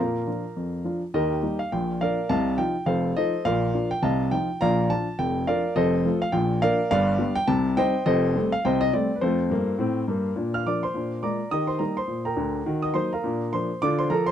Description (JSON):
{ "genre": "jazz, stride piano", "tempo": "208 BPM", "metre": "4/4", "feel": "swing 60% on 8ths", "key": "Bb major", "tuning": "A4 = 439 Hz", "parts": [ { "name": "warm baby grand piano", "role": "solo", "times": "0.0-14.3 s", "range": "F1 to F6", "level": "-22 LUFS", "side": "equal", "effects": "none" } ], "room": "light reverb", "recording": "dry, close 1970s-style studio recording", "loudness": "-22 LUFS", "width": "side -10 dB against mid", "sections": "0.0-1.1 A section; 1.1-10.4 B section; 10.4-14.3 A section", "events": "none", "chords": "0.0 Bb; 1.1 Eb; 1.7 Bb; 2.3 F7/C; 3.5 Bb; 4.0 F7/C; 4.6 Bb; 5.8 F7; 6.3 Bb; 6.9 G7; 7.5 Cm; 8.1 F9; 9.2 F; 10.4 Bb; 10.9 Bb7; 11.5 Eb; 12.7 Ebm; 13.2 Bb; 13.8 Bb/D", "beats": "0.27 0.56 0.85 | 1.14 1.43 1.72 2.00 | 2.29 2.58 2.87 3.16 | 3.45 3.74 4.03 4.32 | 4.61 4.89 5.18 5.47 | 5.76 6.05 6.33 6.62 | 6.91 7.20 7.49 7.77 | 8.06 8.35 8.64 8.92 | 9.21 9.50 9.79 10.07 | 10.36 10.65 10.93 11.22 | 11.51 11.80 12.08 12.37 | 12.66 12.95 13.23 13.52 | 13.81 14.09" }